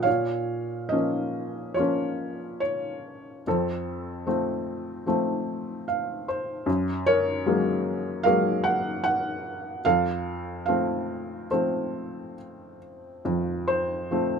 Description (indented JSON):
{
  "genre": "classical, lyrical solo piano",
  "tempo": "67-76 BPM",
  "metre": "4/4",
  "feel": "rubato",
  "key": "Bb harmonic minor",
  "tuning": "A4 = 441 Hz",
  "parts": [
    { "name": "felt-muted upright piano", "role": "solo", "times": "0.0-14.4 s", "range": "F2 to Gb5", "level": "-24 LUFS", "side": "equal", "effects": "none" }
  ],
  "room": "little or no reverb",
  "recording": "close, detailed microphones",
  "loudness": "-24 LUFS",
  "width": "side -6 dB against mid",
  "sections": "0.1-14.4 A section",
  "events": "felt piano fill 5.5-6.7",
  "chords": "0.1 Bbm; 3.5 F; 6.7 Gbadd9; 9.8 F"
}